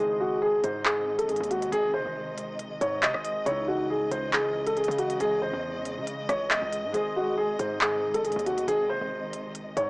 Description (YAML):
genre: hip hop, drill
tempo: 138 BPM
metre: 4/4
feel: half-time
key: unclear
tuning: A4 = 442 Hz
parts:
  - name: dark baby grand piano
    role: melody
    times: 0.0-9.9 s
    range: F#4 to D#5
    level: -27 LUFS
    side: equal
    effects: none
  - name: concert harp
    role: accompaniment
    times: 0.0-9.9 s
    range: C#3 to D#5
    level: -35 LUFS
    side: equal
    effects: none
  - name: dark symphonic string section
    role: sustained chords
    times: 0.0-9.9 s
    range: B#2 to D#5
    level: -37 LUFS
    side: equal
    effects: none
  - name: hard-hitting 808-style bass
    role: bass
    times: 0.0-9.9 s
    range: F#1 to C#3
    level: -39 LUFS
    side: equal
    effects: none
  - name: drill drum kit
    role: drums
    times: 0.6-9.9 s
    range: handclaps, hi-hat, rim click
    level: -28 LUFS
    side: equal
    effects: none
room: light reverb, small room ambience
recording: dry, gritty hardware recording, cassette tape, small speaker sound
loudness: -25 LUFS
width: side -28 dB against mid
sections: 0.0-9.9 A section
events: none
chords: 0.0 G#; 3.5 C#madd9; 6.9 G#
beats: 0.42 0.85 1.29 | 1.72 2.16 2.59 3.03 | 3.46 3.90 4.33 4.77 | 5.20 5.64 6.07 6.51 | 6.94 7.38 7.81 8.25 | 8.68 9.12 9.55